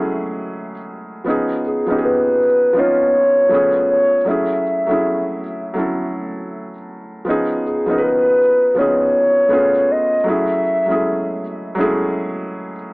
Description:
hip hop; 80 BPM; 4/4; swing 64% on 16ths; F# dorian; A4 = 441 Hz
felt-muted upright piano; accompaniment; 0.0-12.9 s; E#3 to B4; -20 LUFS; equal; cassette tape, low-pass filter
warbly nostalgic lead; melody; 1.7-11.8 s; G#4 to E5; -16 LUFS; equal; chorus, low-pass filter
light reverb; dry, gritty hardware recording, AM radio sound; -14 LUFS; side -27 dB against mid
0.0-12.9 A section
0.0 F#m9; 1.3 C#9; 3.5 C#7b13; 4.3 F#m9; 7.3 C#9; 9.5 C#7b13; 10.3 F#m9

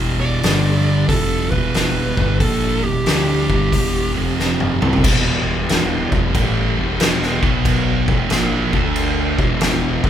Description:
stoner and doom metal; 92 BPM; 4/4; swing 66% on 8ths; E phrygian; A4 = 440 Hz
tonewheel organ; sustained chords; 0.0-10.1 s; E3 to E5; -31 LUFS; left 1 dB
thick fuzz guitar; riff; 0.0-10.1 s; E2 to D4; -23 LUFS; left 7 dB; distortion
thick fuzz guitar; riff; 0.0-10.1 s; E2 to D4; -21 LUFS; right 6 dB; distortion
fuzz fingered electric bass; bass; 0.0-10.1 s; E1 to D2; -25 LUFS; left 1 dB; overdrive, tube saturation
fuzz lead guitar; melody; 0.2-4.1 s; G4 to D5; -23 LUFS; right 2 dB; distortion
oversized low-tuned drum kit; drums; 0.4-10.1 s; crash cymbal, hi-hat, kick drum, snare drum, toms; -19 LUFS; equal
moderate large studio reverb, RT60 0.9 s; band playing live in one room; -15 LUFS; side -10 dB against mid
0.0-5.0 A section; 5.0-10.1 B section
drum fill 4.4-5.0
0.4 G5; 1.1 Em; 4.0 F5; 4.7 Em; 7.3 B5; 8.0 E5; 8.6 D5; 9.3 E5

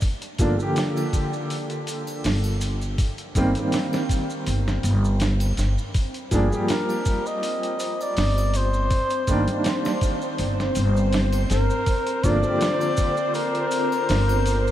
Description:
trip hop; 81 BPM; 4/4; swing 54% on 16ths; A4 = 440 Hz
dusty soul sampler-style drum kit; drums; 0.0-14.7 s; hi-hat, kick drum, snare drum; -27 LUFS; equal; small room ambience
maracas and triangle; percussion; 0.0-14.7 s; -39 LUFS; right 1 dB
dark upright piano; accompaniment; 0.4-14.7 s; D3 to G4; -27 LUFS; right 1 dB; tremolo, tape echo
upright bass; bass; 0.4-14.7 s; G1; -23 LUFS; equal
string machine, cellos; sustained chords; 6.0-14.7 s; C5; -29 LUFS; left 1 dB; ensemble chorus
trumpet with bucket mute; melody; 6.3-14.7 s; Ab4 to Eb5; -26 LUFS; left 1 dB; vintage 12-bit sampler grit, tape echo
moderate huge ambient reverb, RT60 8.3 s; dreamy mix soaked in reverb, vinyl crackle; -20 LUFS; side -12 dB against mid
0.0-14.7 A section
0.0 Bb/G; 3.0 Eb6/G; 5.9 Gm7; 8.9 Cm7/G; 11.9 Bb/G

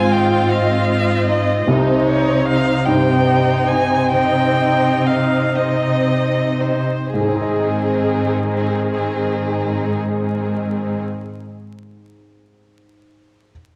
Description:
cinematic; 37-52 BPM (dotted quarters); 6/8; rubato; Ab major; A4 = 440 Hz
rich violin; melody; 0.0-11.0 s; Ab4 to Ab5; -24 LUFS; equal
rich studio violin section; second line; 0.0-11.0 s; C4 to F5; -24 LUFS; equal
clear baby grand piano; accompaniment; 0.0-13.5 s; C2 to Eb5; -27 LUFS; equal
rich studio viola section; accompaniment; 0.0-11.0 s; C3 to Eb4; -25 LUFS; equal
concert harp; arpeggios; 0.0-11.3 s; Ab2 to Eb5; -29 LUFS; equal
rich studio cello section; bass; 0.0-11.0 s; Ab2 to C3; -24 LUFS; equal; tube saturation
wet scoring stage reverb, RT60 1.9 s; worn, warbling old tape, cassette tape, vinyl crackle, warbly pitch drift; -17 LUFS; mono
0.0-7.1 A section; 7.1-10.3 B section
slowing down 0.5-7.1
0.0 Ab; 1.7 Cm; 7.1 Ab

